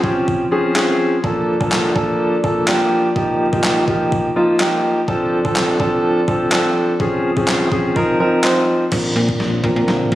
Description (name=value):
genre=dance-pop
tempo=125 BPM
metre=4/4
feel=straight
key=Bb major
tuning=A4 = 438 Hz
part: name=warm concert grand piano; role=accompaniment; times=0.0-10.1 s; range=F3 to C5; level=-16 LUFS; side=equal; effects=sidechain pumping, low-pass filter
part: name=clean 12-bit digital drum machine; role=drums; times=0.0-10.2 s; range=crash cymbal, handclaps, kick drum, snare drum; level=-21 LUFS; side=equal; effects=none
part: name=soft string machine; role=sustained chords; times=9.4-10.2 s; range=D3 to C5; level=-26 LUFS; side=left 1 dB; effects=none
part: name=slap-like FM bass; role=bass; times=8.9-10.2 s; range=Bb1 to Bb2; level=-19 LUFS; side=equal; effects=sidechain pumping
room=light reverb, digital ambience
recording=recorded on a phone in the room, studio reverb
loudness=-14 LUFS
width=side -14 dB against mid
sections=0.0-8.9 A section; 8.9-10.2 B section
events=build-up 8.9-10.2; drum fill 8.9-10.2; filter sweep 8.9-10.2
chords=0.0 Dbmaj7; 1.2 Bbmaj7; 3.2 Ebadd9; 5.1 Dm7; 7.0 Dbmaj7; 8.0 F7sus4; 8.9 Bbadd9